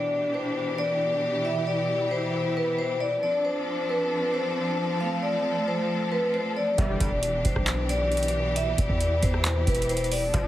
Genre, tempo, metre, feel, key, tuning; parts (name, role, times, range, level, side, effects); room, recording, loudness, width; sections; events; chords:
hip hop, trap; 135 BPM; 4/4; half-time; E phrygian; A4 = 437 Hz
vibraphone with medium hard mallets; melody; 0.0-10.5 s; B4 to F5; -27 LUFS; left 1 dB; digital delay
rich studio string section; sustained chords; 0.0-10.5 s; B2 to A4; -29 LUFS; right 1 dB
sync-sweep polysynth; stabs; 6.8-7.1, 10.3-10.5 s; D2 to G3; -32 LUFS; left 1 dB; chorus
warm 808-style bass; bass; 6.8-10.5 s; D1 to E2; -28 LUFS; equal
booming analog drum machine; drums; 6.8-10.5 s; handclaps, hi-hat, kick drum, rim click; -27 LUFS; equal
light reverb; heavily compressed radio sound, multiband compression; -23 LUFS; side -13 dB against mid
0.0-10.5 A section
0.0 Em7; 3.2 Dm7; 5.0 F; 6.8 Em7